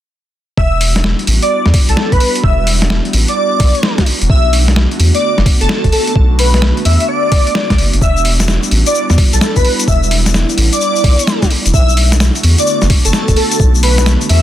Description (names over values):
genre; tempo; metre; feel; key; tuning
UK garage, two-step garage; 129 BPM; 4/4; swing 65% on 16ths; E dorian; A4 = 439 Hz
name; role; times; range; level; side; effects
airy dreamy lead; melody; 0.6-14.4 s; A4 to E5; -17 LUFS; equal; chorus
airy breathy pad; sustained chords; 0.8-14.4 s; G3 to F#4; -21 LUFS; right 2 dB; chorus, sidechain pumping
soft dub sub bass; bass; 0.6-14.4 s; E1 to E2; -12 LUFS; equal; sidechain pumping
electronic kick drum; drums; 0.6-13.7 s; none; -12 LUFS; equal; overdrive
warbly tape-like pad; texture; 0.6-14.4 s; D3 to C#6; -30 LUFS; right 2 dB; none
boom bap sampler-style drum kit; drums; 0.8-14.4 s; hi-hat, shaker, snare drum; -16 LUFS; left 1 dB; overdrive
room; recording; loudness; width
little or no reverb; dense, heavily limited modern master; -9 LUFS; side -12 dB against mid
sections
0.6-14.4 A section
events
none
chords
0.6 Em7; 4.3 Bm9; 8.0 Em7; 11.7 Bm9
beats
| 0.58 1.04 1.51 1.97 | 2.44 2.90 3.37 3.83 | 4.30 4.76 5.23 5.69 | 6.16 6.62 7.09 7.55 | 8.02 8.48 8.95 9.41 | 9.88 10.34 10.81 11.27 | 11.74 12.20 12.67 13.13 | 13.60 14.06